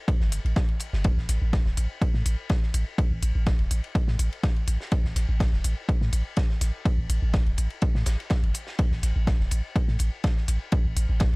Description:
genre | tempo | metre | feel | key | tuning
minimal techno | 124 BPM | 4/4 | straight | unclear | A4 = 440 Hz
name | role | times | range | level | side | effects
big rock drum kit | drums | 0.1-11.4 s | ride cymbal, snare drum | -40 LUFS | left 3 dB | sidechain pumping on cymbals, high-pass filter on cymbals, high-pass filter on snare, high-pass filter on room
electronic kick drum | drums | 0.1-11.3 s | none | -23 LUFS | equal | none
punchy sub bass | bass | 0.2-11.4 s | E1 to A2 | -25 LUFS | equal | sidechain pumping
electronic hi-hat | drums | 0.3-11.1 s | none | -33 LUFS | left 1 dB | none
room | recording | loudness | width
little or no reverb | dry, gritty hardware recording | -23 LUFS | side -30 dB against mid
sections
0.0-11.4 A section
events
none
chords
none

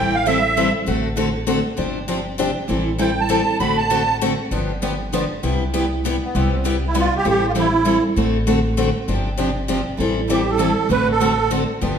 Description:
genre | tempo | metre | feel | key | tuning
acoustic string swing (jazz manouche) | 197 BPM | 3/4 | swing 60% on 8ths | unclear | A4 = 443 Hz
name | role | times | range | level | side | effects
musette accordion | melody | 0.0-0.7, 3.0-4.2, 6.2-8.0, 10.3-11.5 s | B3 to B5 | -20 LUFS | right 4 dB | none
picked steel-string acoustic guitar | accompaniment | 0.0-12.0 s | C3 to A4 | -22 LUFS | left 5 dB | none
picked steel-string acoustic guitar | accompaniment | 0.0-12.0 s | C3 to A4 | -24 LUFS | right 4 dB | none
upright bass | bass | 0.0-12.0 s | G1 to C2 | -25 LUFS | equal | none
room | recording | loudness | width
wet recital hall reverb, RT60 1.4 s | recorded in a church or concert hall | -17 LUFS | side -7 dB against mid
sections
0.0-6.3 A section; 6.3-12.0 A section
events
none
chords
0.0 Am7; 0.9 D7/A; 1.8 G7sus4; 2.7 Am7; 3.6 D7/A; 4.5 G7; 5.4 Cmaj7; 7.2 Am7; 8.2 D7/A; 9.1 G7sus4; 10.0 Am7; 10.9 D7/A

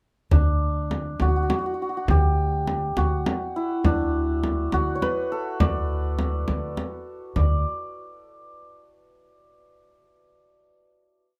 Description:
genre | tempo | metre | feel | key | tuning
Persian modal ensemble | 68 BPM (dotted quarters) | 6/8 | straight | D dastgah mahur | A4 = 444 Hz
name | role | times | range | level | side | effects
santur | melody | 0.3-8.2 s | D4 to D5 | -29 LUFS | equal | none
upright bass | bass | 0.3-7.6 s | D2 | -26 LUFS | equal | none
frame drum | percussion | 0.3-7.6 s | none | -28 LUFS | equal | none
room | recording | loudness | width
little or no reverb | close, detailed microphones | -24 LUFS | mono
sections
0.3-7.4 A section; 7.4-9.1 final note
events
none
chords
none

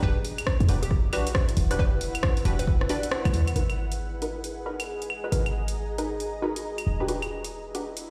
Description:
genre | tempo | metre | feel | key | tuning
UK garage, two-step garage | 136 BPM | 4/4 | swing 63% on 16ths | G# minor | A4 = 440 Hz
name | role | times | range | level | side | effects
hollow square pluck | melody | 0.0-3.1 s | F#4 to D5 | -39 LUFS | equal | chorus, cassette tape, dub echo
punchy chord stab | stabs | 0.0-7.9 s | D4 to B4 | -35 LUFS | equal | chorus, phaser, dub echo
short 808-style bass | bass | 0.0-8.1 s | E1 to E2 | -30 LUFS | equal | none
electronic kick drum | drums | 0.0-2.8 s | none | -27 LUFS | equal | none
ethereal airy pad | texture | 0.0-8.1 s | E4 to A#5 | -38 LUFS | equal | ensemble chorus, built-in reverb, sidechain pumping
punchy analog drum machine | drums | 0.2-8.1 s | claves, hi-hat, rim click | -35 LUFS | equal | none
room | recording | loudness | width
light reverb | played on a big sound system in a bare room, stone room reverb | -27 LUFS | mono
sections
0.0-3.6 A section; 3.6-8.1 B section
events
kick drops out 3.1-3.6; band accent 3.1; filter sweep on synth stab 3.6-8.1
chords
0.0 Em9; 3.6 G#m9; 6.9 Em9

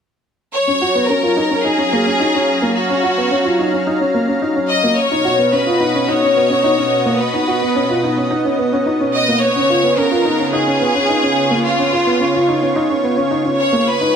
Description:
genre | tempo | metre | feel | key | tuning
electronica | 108 BPM | 4/4 | straight | F# major | A4 = 439 Hz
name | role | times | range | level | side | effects
bright studio violin section | melody | 0.5-14.2 s | E#4 to D#5 | -17 LUFS | left 1 dB | none
lush unison pad | sustained chords | 0.5-14.2 s | B2 to A#5 | -21 LUFS | right 2 dB | chorus
warm upright piano | riff | 0.7-14.1 s | A#3 to F#4 | -17 LUFS | equal | digital delay
room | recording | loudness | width
moderate lush hall reverb, RT60 2.5 s | none | -13 LUFS | side -7 dB against mid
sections
0.5-14.2 A section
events
none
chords
0.5 F#maj7; 5.0 B; 9.4 C#7

